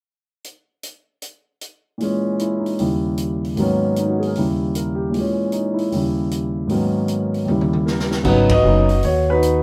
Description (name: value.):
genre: jazz piano trio.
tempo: 154 BPM.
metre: 4/4.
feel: swing 65% on 8ths.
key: unclear.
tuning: A4 = 439 Hz.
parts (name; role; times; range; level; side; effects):
open jazz drum kit; drums; 0.4-9.5 s; crash cymbal, hi-hat, kick drum, ride cymbal, snare drum, toms; -31 LUFS; equal; none.
warm concert grand piano; melody; 2.0-9.6 s; D#2 to F#5; -20 LUFS; equal; none.
upright bass; bass; 8.2-9.6 s; F#1 to D#2; -21 LUFS; equal; none.
room: light reverb.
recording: none.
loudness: -19 LUFS.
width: mono.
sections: 0.4-2.0 A section; 2.0-8.3 B section; 8.3-9.6 C section.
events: drum fill 7.5-8.3; band accent 8.5.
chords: 0.4 N.C.; 2.0 A#m7b5; 2.8 D#7b9; 3.6 G#m11; 4.4 D#7b9; 5.1 A#m7b5; 5.9 D#7b9; 6.7 G#m11; 7.5 D#7b9; 8.3 G#m7.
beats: | 0.44 0.83 1.23 1.62 | 2.01 2.40 2.79 3.18 | 3.58 3.97 4.36 4.75 | 5.14 5.53 5.92 6.31 | 6.70 7.09 7.48 7.87 | 8.26 8.65 9.04 9.42.